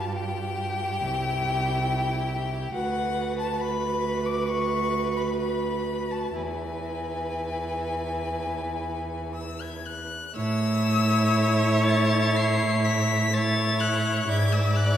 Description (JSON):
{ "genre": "classical, slow romantic movement for string quartet", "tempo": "59-70 BPM", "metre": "4/4", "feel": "rubato", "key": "A major", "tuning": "A4 = 438 Hz", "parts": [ { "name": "rich violin", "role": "melody", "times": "0.0-15.0 s", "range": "F#5 to C7", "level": "-29 LUFS", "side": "left 5 dB", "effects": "none" }, { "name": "rich violin", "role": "second line", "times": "0.0-15.0 s", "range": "G4 to D5", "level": "-31 LUFS", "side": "equal", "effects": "none" }, { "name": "rich viola", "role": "accompaniment", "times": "0.0-15.0 s", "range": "E4 to F#4", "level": "-32 LUFS", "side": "right 2 dB", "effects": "none" }, { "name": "rich cello", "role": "bass", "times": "0.0-15.0 s", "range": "C2 to A2", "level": "-27 LUFS", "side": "right 2 dB", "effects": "none" } ], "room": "wet scoring stage reverb, RT60 1.5 s", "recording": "heard from further back in the room", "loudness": "-23 LUFS", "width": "side -10 dB against mid", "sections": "0.0-10.3 A section; 10.3-15.0 B section", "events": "none", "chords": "0.0 G7(no3); 1.0 C; 2.7 Bm/D; 6.4 E; 10.3 A; 14.3 E7/G#", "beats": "0.13 1.01 1.88 | 2.74 3.60 4.48 5.40 | 6.36 7.36 8.37 9.35 | 10.34 11.35 12.35 13.32 | 14.28" }